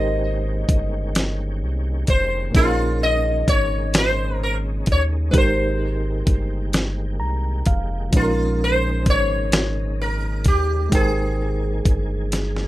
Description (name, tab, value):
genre	slow six-eight R&B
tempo	43 BPM (dotted quarters)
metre	6/8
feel	straight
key	Ab major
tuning	A4 = 440 Hz
part	sitar	melody	0.0-12.7 s	F4 to Eb5	-23 LUFS	equal	none
part	reed electric piano	accompaniment	0.0-12.7 s	Bb2 to Bb5	-27 LUFS	right 2 dB	fast tremolo
part	tonewheel organ	sustained chords	0.0-12.7 s	Db3 to Ab4	-35 LUFS	equal	chorus vibrato, fast rotary speaker
part	round analog bass	bass	0.0-12.7 s	F1 to Eb2	-23 LUFS	equal	none
part	dusty soul sampler-style drum kit	drums	0.7-12.7 s	hi-hat, kick drum, snare drum	-19 LUFS	equal	none
room	little or no reverb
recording	rough home demo mix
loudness	-18 LUFS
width	side -16 dB against mid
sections	0.0-12.7 A section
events	reed electric piano fill 6.7-8.1, 12.3-12.7; drum fill 12.3-12.7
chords	0.0 Abmaj9; 2.5 Bbm7; 5.3 Abmaj9; 8.1 Bbm7; 10.9 Abmaj9